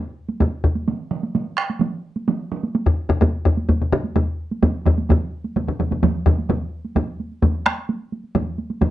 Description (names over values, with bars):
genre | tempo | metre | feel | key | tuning
japanese traditional, taiko drum ensemble | 128 BPM | 4/4 | straight | none | none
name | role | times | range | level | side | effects
solo taiko drums | percussion | 0.3-8.9 s | none | -24 LUFS | right 3 dB | none
taiko ensemble | percussion | 0.4-8.9 s | none | -19 LUFS | left 1 dB | none
taiko ensemble | percussion | 0.9-8.9 s | none | -25 LUFS | right 6 dB | none
room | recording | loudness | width
wet small room reverb, RT60 0.6 s | rough home demo mix, nothing above 10.8 kHz | -19 LUFS | side -14 dB against mid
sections
0.0-6.5 A section; 6.5-8.9 B section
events
none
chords
none